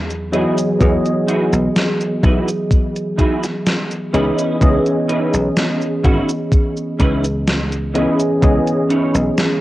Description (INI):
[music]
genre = vaporwave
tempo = 63 BPM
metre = 4/4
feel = straight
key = unclear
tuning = A4 = 438 Hz
[part]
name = tine electric piano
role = accompaniment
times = 0.0-9.6 s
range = E3 to D#5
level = -18 LUFS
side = equal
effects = overdrive, ensemble chorus, cassette tape, analog delay
[part]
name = dry thumbed slap bass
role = bass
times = 0.0-9.3 s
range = G#1 to E2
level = -20 LUFS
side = equal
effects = none
[part]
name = gated 80s digital drum machine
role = drums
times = 0.1-9.6 s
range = cabasa, hi-hat, snare drum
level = -21 LUFS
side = equal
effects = gated reverb, gated reverb snare, cassette tape
[part]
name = semi-hollow electric guitar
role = riff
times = 0.3-9.1 s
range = C#4 to C#5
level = -23 LUFS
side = right 1 dB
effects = ensemble chorus, vintage 12-bit sampler grit, cassette tape, analog delay
[part]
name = electronic kick drum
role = drums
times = 0.8-8.6 s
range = none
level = -14 LUFS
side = equal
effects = cassette tape
[sound]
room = light reverb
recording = home recording on cassette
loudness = -14 LUFS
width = side -16 dB against mid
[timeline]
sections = 0.0-9.6 A section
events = none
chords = 0.0 Emaj9; 4.1 C#m9